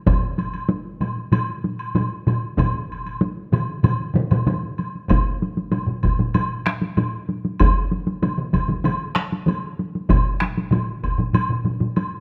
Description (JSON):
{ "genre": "japanese traditional, taiko drum ensemble", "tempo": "96 BPM", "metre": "4/4", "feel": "straight", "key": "none", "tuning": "none", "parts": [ { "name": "solo taiko drums", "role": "percussion", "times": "0.1-12.1 s", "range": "none", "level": "-27 LUFS", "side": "equal", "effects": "none" }, { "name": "taiko ensemble", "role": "percussion", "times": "0.1-12.0 s", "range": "none", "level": "-26 LUFS", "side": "equal", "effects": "none" }, { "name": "taiko ensemble", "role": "percussion", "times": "0.1-11.2 s", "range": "none", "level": "-24 LUFS", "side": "equal", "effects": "none" }, { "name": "woodblock", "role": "percussion", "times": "0.1-12.1 s", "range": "none", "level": "-32 LUFS", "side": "equal", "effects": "none" }, { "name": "taiko ensemble", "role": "percussion", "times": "2.6-9.6 s", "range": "none", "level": "-26 LUFS", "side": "equal", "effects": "none" } ], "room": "moderate recital hall reverb, RT60 1.5 s", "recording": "close, detailed microphones", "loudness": "-22 LUFS", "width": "mono", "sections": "0.0-5.1 A section; 5.1-12.2 B section", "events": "none", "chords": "none" }